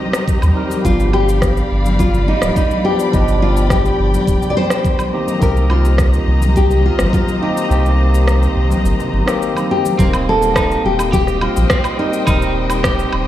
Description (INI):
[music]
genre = sunset chillout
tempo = 105 BPM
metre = 4/4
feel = straight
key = Eb major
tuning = A4 = 440 Hz
[part]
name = barky tine electric piano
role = accompaniment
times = 0.0-13.3 s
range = B2 to Bb4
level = -21 LUFS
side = equal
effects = auto-pan, tape echo
[part]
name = muted studio string section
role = sustained chords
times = 0.0-13.3 s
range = G4 to B5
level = -24 LUFS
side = left 2 dB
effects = none
[part]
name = electronic rim click, shaker and woodblock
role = drums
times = 0.1-13.2 s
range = none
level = -22 LUFS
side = equal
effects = none
[part]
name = electronic kick drum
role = drums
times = 0.3-13.0 s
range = none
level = -17 LUFS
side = equal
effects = none
[part]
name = warm sub bass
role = bass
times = 0.4-13.3 s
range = D1 to Eb2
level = -15 LUFS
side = equal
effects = none
[part]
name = congas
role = percussion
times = 0.4-10.0 s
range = none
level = -24 LUFS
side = left 2 dB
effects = none
[part]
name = nylon-string guitar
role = melody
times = 0.9-13.3 s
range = Eb4 to D5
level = -19 LUFS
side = left 1 dB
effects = tape echo
[part]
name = electric guitar at the edge of break-up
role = arpeggios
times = 10.0-13.1 s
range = C4 to G4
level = -24 LUFS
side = right 2 dB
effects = tape echo
[sound]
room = small room ambience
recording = played on a big sound system in a bare room, stone room reverb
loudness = -13 LUFS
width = side -12 dB against mid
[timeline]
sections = 0.0-10.0 A section; 10.0-13.3 B section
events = kick drops out 7.7-10.0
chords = 0.0 Eb6; 0.8 G7; 5.1 Cm7; 10.0 Eb6